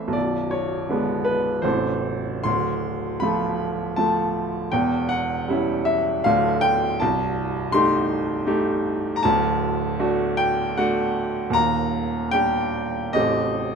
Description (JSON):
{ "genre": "classical, romantic character piece for solo piano", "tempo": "79 BPM", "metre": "3/4", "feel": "uneven beats, rubato", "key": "unclear", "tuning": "A4 = 438 Hz", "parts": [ { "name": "bright grand piano", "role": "solo", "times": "0.0-13.8 s", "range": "A0 to C6", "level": "-20 LUFS", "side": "equal", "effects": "none" } ], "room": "moderate large studio reverb, RT60 0.9 s", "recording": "none", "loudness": "-20 LUFS", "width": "side -6 dB against mid", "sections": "0.0-13.8 A section", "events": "none", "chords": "0.1 G#dim/B; 1.6 Am; 2.5 Dm; 4.7 C#dim/E; 6.2 Dm; 7.0 Am7b5/C; 9.2 D; 11.5 Ebmaj7; 13.1 Am7b5", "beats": "| 0.15 0.90 1.65 | 2.47 3.24 3.99 | 4.73 5.48 6.24 | 7.00 7.72 8.46 | 9.24 9.99 10.77 | 11.54 12.31 13.14" }